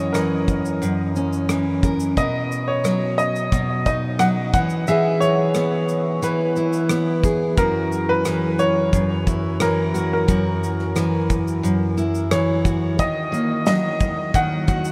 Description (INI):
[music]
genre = acoustic pop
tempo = 89 BPM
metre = 4/4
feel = straight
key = unclear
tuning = A4 = 440 Hz
[part]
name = clear upright piano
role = melody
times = 0.0-14.9 s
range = A#4 to F#5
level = -26 LUFS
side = equal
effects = tape echo
[part]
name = fingerpicked steel-string acoustic guitar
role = accompaniment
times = 0.0-14.9 s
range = F#2 to A#4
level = -23 LUFS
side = equal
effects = none
[part]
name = loose indie drum kit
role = drums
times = 0.1-14.9 s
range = kick drum, rim click, shaker, snare drum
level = -27 LUFS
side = equal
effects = none
[sound]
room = wet huge ambient reverb, RT60 8.8 s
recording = dreamy mix soaked in reverb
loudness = -20 LUFS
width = mono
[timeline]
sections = 0.0-13.0 A section; 13.0-14.9 B section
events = none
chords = 0.0 F#7; 2.2 Bmaj7; 4.5 E; 7.6 F#7; 13.0 D#m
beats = 0.14 0.82 1.49 | 2.17 2.84 3.52 4.20 | 4.87 5.55 6.23 6.90 | 7.58 8.26 8.93 9.61 | 10.29 10.96 11.64 12.31 | 12.99 13.67 14.34